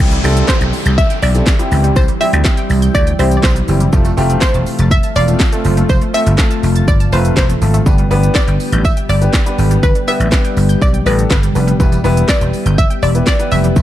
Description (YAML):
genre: dance-pop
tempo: 122 BPM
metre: 4/4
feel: straight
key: unclear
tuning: A4 = 439 Hz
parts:
  - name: warm grand piano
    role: accompaniment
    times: 0.0-13.8 s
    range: G3 to B4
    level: -21 LUFS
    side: left 1 dB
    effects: sidechain pumping
  - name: glassy FM pad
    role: sustained chords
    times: 0.8-13.8 s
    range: C3 to G4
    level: -23 LUFS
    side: left 2 dB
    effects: ensemble chorus, built-in reverb, sidechain pumping
  - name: wide unison pluck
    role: arpeggios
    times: 0.0-13.8 s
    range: D3 to A6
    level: -26 LUFS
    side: moving between equal and right 7 dB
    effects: auto-pan, sidechain pumping, tape echo
  - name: vintage slap bass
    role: bass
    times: 0.0-13.8 s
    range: E1 to D2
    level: -13 LUFS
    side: equal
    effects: sidechain pumping
  - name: downlifter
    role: sound effects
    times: 0.0-3.9 s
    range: none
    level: -25 LUFS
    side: equal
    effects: none
  - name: house drum kit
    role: drums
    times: 0.1-13.8 s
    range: handclaps, hi-hat, kick drum, shaker, snare drum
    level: -15 LUFS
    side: equal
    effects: none
  - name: tambourine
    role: percussion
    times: 0.2-13.8 s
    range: none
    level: -36 LUFS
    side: right 9 dB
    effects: none
  - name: analog pluck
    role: melody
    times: 0.5-13.8 s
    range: B4 to E5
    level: -20 LUFS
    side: equal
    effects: chorus, tape echo
room: little or no reverb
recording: dark, warm production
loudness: -10 LUFS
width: side -13 dB against mid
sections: 0.0-13.8 A section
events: none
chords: 0.0 C; 3.9 F; 7.9 G; 11.8 Em